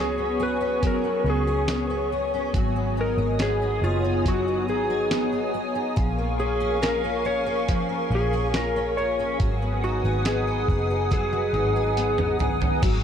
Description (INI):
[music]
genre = dream pop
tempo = 70 BPM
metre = 4/4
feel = straight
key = G# dorian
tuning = A4 = 441 Hz
[part]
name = electric slide guitar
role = melody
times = 0.0-12.4 s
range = E#4 to C#5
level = -27 LUFS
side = equal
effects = tape echo
[part]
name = hollow soft pad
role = sustained chords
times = 0.0-13.0 s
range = B3 to D#6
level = -29 LUFS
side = equal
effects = ensemble chorus
[part]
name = fingerpicked twelve-string acoustic guitar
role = arpeggios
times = 0.0-13.0 s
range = E#3 to G#4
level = -29 LUFS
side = left 3 dB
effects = ensemble chorus, tape echo
[part]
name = vintage muted picked electric bass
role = bass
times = 0.0-13.0 s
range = F#1 to C#2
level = -28 LUFS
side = equal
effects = none
[part]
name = dusty soul sampler-style drum kit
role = drums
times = 0.8-13.0 s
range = crash cymbal, hi-hat, kick drum, snare drum, toms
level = -25 LUFS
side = right 1 dB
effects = none
[sound]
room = light reverb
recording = dark, warm production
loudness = -22 LUFS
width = side -8 dB against mid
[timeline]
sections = 0.0-12.8 A section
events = drum fill 11.1-12.8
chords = 0.0 C#7sus4; 2.5 G#m7; 6.0 A#m7; 9.4 G#m7